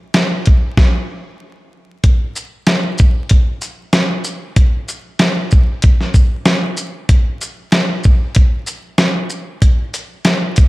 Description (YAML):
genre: hip hop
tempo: 95 BPM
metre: 4/4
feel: swing 56% on 16ths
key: none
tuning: none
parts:
  - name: dusty soul sampler-style drum kit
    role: drums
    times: 0.1-10.7 s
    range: hi-hat, kick drum, shaker, snare drum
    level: -12 LUFS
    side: equal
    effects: none
room: little or no reverb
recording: vinyl crackle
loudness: -12 LUFS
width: side -20 dB against mid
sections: 0.0-2.0 A section; 2.0-10.7 B section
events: stop 0.8-2.0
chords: none